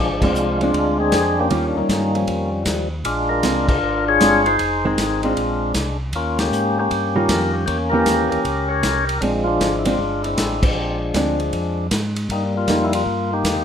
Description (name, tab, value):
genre	soul jazz organ trio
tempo	156 BPM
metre	4/4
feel	swing 66% on 8ths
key	Bb mixolydian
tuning	A4 = 440 Hz
part	percussive tonewheel organ	melody	0.0-13.6 s	F3 to Db5	-19 LUFS	left 2 dB	slow rotary speaker
part	mellow tonewheel organ	bass	0.0-13.6 s	F1 to Ab2	-25 LUFS	equal	overdrive, chorus vibrato, slow rotary speaker
part	hollow-body jazz guitar	accompaniment	0.2-12.9 s	Eb3 to G4	-22 LUFS	right 3 dB	none
part	vintage drum kit	drums	0.2-13.6 s	crash cymbal, hi-hat, kick drum, ride cymbal, snare drum	-24 LUFS	equal	none
room	moderate studio reverb, RT60 0.8 s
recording	minimal, uncompressed stereo recording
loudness	-17 LUFS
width	side -8 dB against mid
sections	0.0-13.6 A section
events	band accent 0.2, 3.6, 6.3, 10.6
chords	0.0 Bb9 (rootless); 1.5 Eb9; 3.1 Bb9; 4.6 Fm7; 5.4 Bb9; 6.1 Eb9; 7.7 Edim7; 9.2 Bb9; 12.3 Cm7 (rootless)